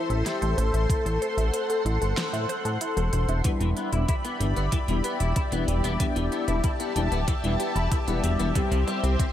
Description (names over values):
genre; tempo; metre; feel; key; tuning
synthwave; 94 BPM; 4/4; straight; E minor; A4 = 440 Hz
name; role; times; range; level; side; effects
soft octave-layered synth lead; melody; 0.0-3.1 s; E4 to A4; -31 LUFS; left 2 dB; chorus, ping-pong delay
lush unison pad; sustained chords; 0.0-9.3 s; G4 to C6; -30 LUFS; left 2 dB; chorus, phaser
analog pluck; arpeggios; 0.1-9.3 s; D4 to E5; -37 LUFS; right 2 dB; chorus, ping-pong delay
chorused synth bass; bass; 0.1-9.2 s; D1 to A2; -25 LUFS; equal; none
pop drum kit; drums; 0.1-9.3 s; hi-hat, snare drum, toms; -35 LUFS; right 1 dB; high-pass filter on hats, high-pass filter on snare, high-pass filter on toms
electronic kick drum; drums; 0.9-9.3 s; none; -26 LUFS; equal; overdrive
clean electric guitar; riff; 3.5-9.2 s; C3 to E4; -33 LUFS; left 4 dB; ensemble chorus, low-pass filter, ping-pong delay
analog synth brass; stabs; 3.5-9.1 s; G3 to G4; -31 LUFS; left 3 dB; chorus, cassette tape, ping-pong delay
room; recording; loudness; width
light reverb, digital ambience; none; -23 LUFS; side -11 dB against mid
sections
0.0-3.5 A section; 3.5-9.3 B section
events
drum fill 3.5-9.3; filter sweep on analog polysynth 3.5-9.3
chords
0.0 Am; 3.5 Em7; 8.6 C